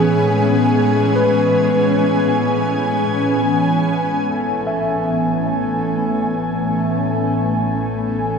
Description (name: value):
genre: ambient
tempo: free time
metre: none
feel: none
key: A major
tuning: A4 = 443 Hz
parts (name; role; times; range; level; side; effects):
- ethereal airy pad; sustained chords; 0.0-8.4 s; A2 to G#5; -16 LUFS; equal; ensemble chorus, built-in reverb
- overdriven tine electric piano; arpeggios; 0.0-8.4 s; C#4 to E5; -22 LUFS; left 1 dB; medium tremolo, diffuse ambient delay
- warm symphonic double bass section; bass; 4.3-8.4 s; A1; -28 LUFS; equal; none
- hand-pumped harmonium; drone; 4.3-8.4 s; A3 to A4; -28 LUFS; left 2 dB; stereo widening
room: wet lush hall reverb, RT60 2.8 s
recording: dreamy mix soaked in reverb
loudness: -15 LUFS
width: side -5 dB against mid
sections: 0.0-4.3 A section; 4.3-8.4 B section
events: filter sweep on ambient pad 4.3-8.4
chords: 0.0 Amaj9